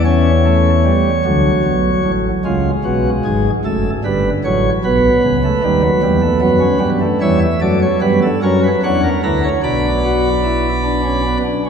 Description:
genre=classical, baroque-style 4-part fugue for pipe organ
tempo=50 BPM (dotted quarters)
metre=6/8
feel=straight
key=B minor from 7.2 s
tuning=A4 = 440 Hz
part: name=pipe organ, sparkling flutes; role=solo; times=0.0-11.7 s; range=F#1 to B5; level=-12 LUFS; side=equal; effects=none
room=wet cathedral reverb, RT60 4.0 s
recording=minimal, uncompressed stereo recording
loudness=-12 LUFS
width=side -7 dB against mid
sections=0.0-2.5 A section; 2.5-11.7 B section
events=none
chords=0.1 A/E; 1.2 D; 2.5 C#7; 3.7 F#m; 4.9 B7; 6.0 Em; 7.2 C#m7b5/E; 8.4 F#; 9.6 Bm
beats=| 0.06 1.25 | 2.45 3.66 | 4.85 6.04 | 7.23 8.43 | 9.63 10.84

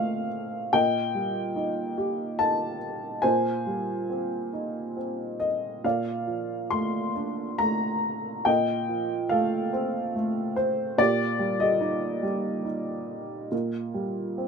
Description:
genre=classical, lyrical solo piano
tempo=70 BPM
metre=3/4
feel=rubato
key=Bb major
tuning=A4 = 440 Hz
part: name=dark upright piano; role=solo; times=0.0-14.5 s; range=Bb2 to C6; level=-25 LUFS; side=equal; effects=none
room=light reverb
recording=minimal, uncompressed stereo recording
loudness=-25 LUFS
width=side -5 dB against mid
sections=0.0-14.5 A section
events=none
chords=0.0 F7/Bb; 0.7 Eb/Bb; 3.2 Abmaj7/Bb; 5.8 Bbmaj7; 8.5 F7/Bb; 11.0 Ebmaj7/Bb; 13.5 Bbsus4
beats=| 0.73 1.56 2.39 | 3.24 4.09 4.97 | 5.84 6.72 7.60 | 8.46 9.31 10.16 | 10.99 11.81 12.66 | 13.52 14.38

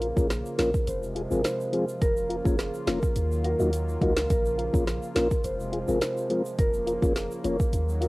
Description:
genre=dancehall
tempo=105 BPM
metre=4/4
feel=straight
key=Bb minor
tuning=A4 = 440 Hz
part: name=percussive tonewheel organ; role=accompaniment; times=0.0-8.1 s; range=F3 to Db5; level=-30 LUFS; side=left 2 dB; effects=chorus vibrato, slow rotary speaker, cassette tape, plate reverb
part: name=warm analog pad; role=sustained chords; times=0.0-8.1 s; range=C3 to F4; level=-35 LUFS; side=equal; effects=chorus, sidechain pumping, cassette tape, plate reverb
part: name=warm 808-style bass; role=bass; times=0.0-8.1 s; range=F1 to Eb2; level=-31 LUFS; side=equal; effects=none
part: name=afro-pop drum kit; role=drums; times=0.0-8.1 s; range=hi-hat, kick drum, rim click, snare drum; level=-27 LUFS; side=equal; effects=cassette tape
part: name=marimba with medium mallets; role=melody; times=0.2-8.1 s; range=Ab4 to C5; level=-30 LUFS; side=right 1 dB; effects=tape echo, plate reverb
part: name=tube shaker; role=percussion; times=0.2-8.1 s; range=none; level=-49 LUFS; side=right 4 dB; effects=none
room=light reverb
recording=home recording on cassette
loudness=-24 LUFS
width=side -21 dB against mid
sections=0.0-8.1 A section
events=none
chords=0.0 Bbm; 0.9 Fm; 2.0 Bbm/F; 3.2 Ebmadd9; 4.3 Bbm; 5.4 Fm; 6.6 Bbm/F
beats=0.30 0.87 1.45 | 2.02 2.59 3.16 3.73 | 4.30 4.87 5.45 6.02 | 6.59 7.16 7.73

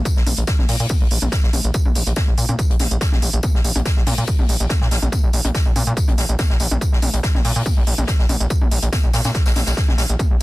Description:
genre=driving peak-time techno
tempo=142 BPM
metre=4/4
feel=straight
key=unclear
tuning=A4 = 440 Hz
part: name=electronic kick drum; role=drums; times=0.1-10.3 s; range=none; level=-18 LUFS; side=equal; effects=none
part: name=open jazz drum kit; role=drums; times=0.1-10.3 s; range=hi-hat, snare drum, tambourine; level=-28 LUFS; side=left 2 dB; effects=high-pass filter on hats, high-pass filter on snare, high-pass filter on perc, high-pass filter on room
part: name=techno drum kit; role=drums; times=0.1-10.3 s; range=hi-hat, toms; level=-26 LUFS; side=equal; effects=none
part: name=gritty driven synth bass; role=bass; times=0.2-10.4 s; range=Bb1 to Bb2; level=-20 LUFS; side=equal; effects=sidechain pumping
room=little or no reverb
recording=dense, heavily limited modern master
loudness=-16 LUFS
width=side -19 dB against mid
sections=0.0-10.4 A section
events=none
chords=none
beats=| 0.05 0.48 0.90 1.32 | 1.74 2.17 2.59 3.01 | 3.43 3.86 4.28 4.70 | 5.12 5.55 5.97 6.39 | 6.81 7.24 7.66 8.08 | 8.50 8.93 9.35 9.77 | 10.19

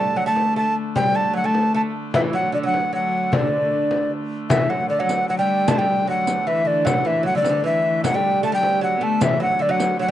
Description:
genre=medieval dance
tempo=153 BPM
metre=3/4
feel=straight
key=D major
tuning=A4 = 440 Hz
part: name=mellow tenor recorder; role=melody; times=0.0-10.1 s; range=D5 to A5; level=-20 LUFS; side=equal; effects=slapback echo
part: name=lute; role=second line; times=0.0-10.1 s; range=D3 to A3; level=-26 LUFS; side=right 6 dB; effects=slapback echo
part: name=warm viola da gamba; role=second line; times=0.0-10.1 s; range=C3 to B3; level=-26 LUFS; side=left 5 dB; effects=slapback echo
part: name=rich hurdy-gurdy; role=drone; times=0.0-10.1 s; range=D3 to A3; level=-30 LUFS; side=right 2 dB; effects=stereo widening
part: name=frame drum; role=percussion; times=0.2-10.0 s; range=none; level=-25 LUFS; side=left 3 dB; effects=none
part: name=riq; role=percussion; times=4.5-10.0 s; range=none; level=-28 LUFS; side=right 7 dB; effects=none
room=little or no reverb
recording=recorded outdoors, with no room sound, nothing above 10.6 kHz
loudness=-18 LUFS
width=side -12 dB against mid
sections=0.0-4.5 A section; 4.5-10.1 A section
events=none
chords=none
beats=0.17 0.56 | 0.95 1.35 1.74 | 2.14 2.53 2.93 | 3.32 3.71 4.11 | 4.50 4.89 5.29 | 5.68 6.07 6.46 | 6.86 7.25 7.64 | 8.03 8.42 8.81 | 9.20 9.59 9.98

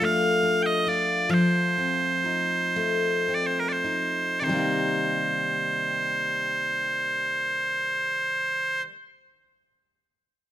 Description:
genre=celtic folk, Celtic slow air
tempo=31-50 BPM (dotted quarters)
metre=6/8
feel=rubato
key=C dorian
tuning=A4 = 444 Hz
part: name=loud bright bagpipes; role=melody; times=0.0-8.8 s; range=Bb4 to G5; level=-24 LUFS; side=right 2 dB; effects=none
part: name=picked steel-string acoustic guitar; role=accompaniment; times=0.0-9.0 s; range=C3 to F4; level=-27 LUFS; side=left 2 dB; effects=none
room=light reverb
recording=close, detailed microphones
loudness=-22 LUFS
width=side -12 dB against mid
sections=0.0-4.5 A section; 4.5-8.1 B section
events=slowing down 0.0-4.5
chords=0.0 Dm/F; 1.3 F7; 4.5 Cm7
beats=0.03 | 1.31 2.76 | 4.45 6.28

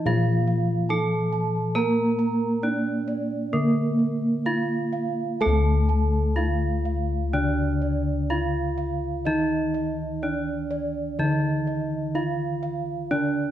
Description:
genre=Javanese gamelan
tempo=63 BPM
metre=4/4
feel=uneven beats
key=D pelog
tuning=A4 = 436 Hz
part: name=gamelan-type bronze metallophone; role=melody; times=0.0-13.5 s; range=Bb3 to Bb4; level=-27 LUFS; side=right 2 dB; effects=none
part: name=gamelan-type bronze metallophone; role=accompaniment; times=0.0-13.5 s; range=D3 to Bb3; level=-28 LUFS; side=equal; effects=none
part: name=gamelan-type bronze metallophone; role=arpeggios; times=0.0-13.5 s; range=Bb4 to Bb5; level=-32 LUFS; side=right 4 dB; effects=none
part: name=gamelan-type bossed gongs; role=bass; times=0.0-13.5 s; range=D2 to Bb4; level=-26 LUFS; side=left 2 dB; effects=none
room=moderate recital hall reverb, RT60 1.4 s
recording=dark, warm production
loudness=-22 LUFS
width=side -11 dB against mid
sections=0.0-5.4 A section; 5.4-13.5 B section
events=none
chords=none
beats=0.07 0.90 | 1.76 2.64 3.54 4.46 | 5.41 6.38 7.34 8.30 | 9.26 10.23 11.19 12.15 | 13.11

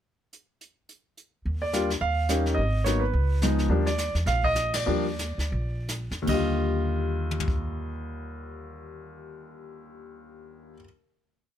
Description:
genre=jazz piano trio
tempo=149-214 BPM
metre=4/4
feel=swing 59% on 8ths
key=Eb major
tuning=A4 = 440 Hz
part: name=jazz brush drum kit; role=drums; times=0.3-7.6 s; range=brushed snare drum, crash cymbal, hi-hat, kick drum, ride cymbal, snare drum, toms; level=-32 LUFS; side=left 1 dB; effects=none
part: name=upright bass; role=bass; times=1.5-10.7 s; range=Ab1 to Fb2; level=-28 LUFS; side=equal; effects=none
part: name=clear grand piano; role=melody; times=1.6-10.8 s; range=Eb2 to F5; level=-28 LUFS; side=left 1 dB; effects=none
room=little or no reverb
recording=close, detailed microphones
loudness=-24 LUFS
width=side -10 dB against mid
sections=0.3-1.5 pickup bar; 1.5-6.3 A section; 6.3-9.5 final chord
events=slowing down 3.7-6.3; band accent 4.7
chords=0.3 N.C.; 1.5 Ebmaj9; 2.6 Abm7; 3.1 Db9; 3.7 Ebmaj7(no3); 6.3 Ebmaj9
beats=| 0.33 0.61 0.89 1.17 | 1.45 1.73 2.01 2.29 | 2.58 2.86 3.14 3.42 | 3.70 3.99 4.27 4.57 | 4.88 5.20 5.53 5.89 | 6.28 6.68 7.08 7.48 | 7.88 8.29 8.69 9.09

